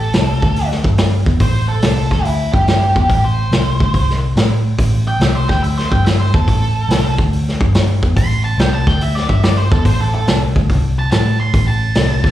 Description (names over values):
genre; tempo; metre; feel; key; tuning
blues rock power trio and southern rock; 142 BPM; 4/4; swing 67% on 8ths; A minor; A4 = 439 Hz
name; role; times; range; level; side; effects
octave-fuzz lead guitar; melody; 0.0-12.3 s; E4 to C6; -21 LUFS; right 1 dB; distortion, slapback echo, analog delay
vintage muted picked electric bass; bass; 0.0-12.3 s; A1 to A2; -15 LUFS; equal; none
vintage drum kit; drums; 0.1-12.3 s; hi-hat, kick drum, snare drum; -17 LUFS; equal; none
room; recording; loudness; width
small room ambience; live gig heard through the venue's PA, club reverb; -12 LUFS; side -13 dB against mid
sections
0.0-12.3 A section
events
lead electric guitar solo 0.0-12.3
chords
0.4 D5; 0.8 N.C.; 1.2 Am; 2.0 D5; 2.5 N.C.; 2.9 Am; 3.9 N.C.; 4.4 Am; 5.4 Dsus4; 5.8 C/G (rootless); 6.3 Am; 7.1 N.C.; 8.0 Am; 8.8 Dsus24; 9.2 Cadd9/G (rootless); 9.6 Am; 10.7 Am/C; 11.1 Am